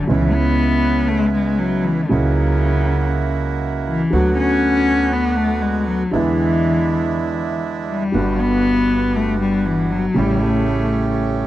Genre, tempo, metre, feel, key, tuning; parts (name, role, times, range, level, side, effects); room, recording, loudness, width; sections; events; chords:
tango; 119 BPM; 4/4; rubato; A major; A4 = 439 Hz
warm cello; second line; 0.0-11.2 s; C#3 to C#4; -19 LUFS; left 3 dB
warm concert grand piano; accompaniment; 0.1-11.5 s; G1 to F#4; -21 LUFS; right 1 dB
bandoneon; stabs; 0.1-11.5 s; D3 to G4; -25 LUFS; right 6 dB
upright bass; bass; 0.1-11.5 s; G1 to E2; -23 LUFS; right 1 dB
little or no reverb; dry, close 1970s-style studio recording; -16 LUFS; side -14 dB against mid
0.0-11.5 A section
cello solo 0.0-11.5
0.1 C#m7; 2.1 F#7/C#; 4.1 Bm/D; 6.1 E7; 8.1 Gmaj7; 10.2 A7